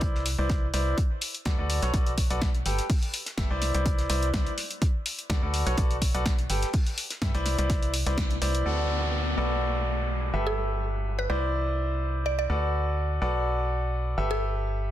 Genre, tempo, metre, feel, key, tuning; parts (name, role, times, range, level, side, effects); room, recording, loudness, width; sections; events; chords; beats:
piano house; 125 BPM; 4/4; swing 54% on 16ths; A4 = 442 Hz
clear grand piano; riff; 0.0-14.9 s; E4 to G5; -30 LUFS; equal; sidechain pumping, low-pass filter, dub echo
organ-like FM bass; bass; 0.0-14.9 s; G1 to G2; -28 LUFS; equal; sidechain pumping
cloth-damped thuddy drum kit; drums; 0.0-8.5 s; hi-hat, snare drum; -42 LUFS; left 2 dB
electronic kick drum; drums; 0.0-8.3 s; -26 LUFS; equal; overdrive
punchy analog drum machine; drums; 0.3-8.6 s; hi-hat, snare drum; -33 LUFS; left 1 dB
downlifter; sound effects; 8.7-12.5 s; -34 LUFS; left 1 dB
mallet-like synth pluck; melody; 10.5-14.5 s; A4 to D5; -34 LUFS; right 2 dB; chorus, phaser, dub echo
light reverb, small room reverb; dense, heavily limited modern master; -25 LUFS; side -12 dB against mid
0.0-8.7 A section; 8.7-14.9 B section
band accent 8.2
0.0 Cmaj9; 1.0 D6; 1.7 Bm7; 2.7 G69; 3.6 Cmaj9; 4.8 D6; 5.5 Bm7; 6.5 G69; 7.5 Cmaj9; 8.7 D6; 9.4 Bm7; 10.3 G69; 11.3 Cmaj9; 12.5 D6; 13.2 Bm7; 14.2 G69
0.02 0.50 | 0.98 1.46 1.94 2.42 | 2.90 3.38 3.86 4.34 | 4.82 5.30 5.78 6.26 | 6.74 7.22 7.70 8.18 | 8.66 9.14 9.62 10.10 | 10.58 11.06 11.54 12.02 | 12.50 12.98 13.46 13.94 | 14.42 14.90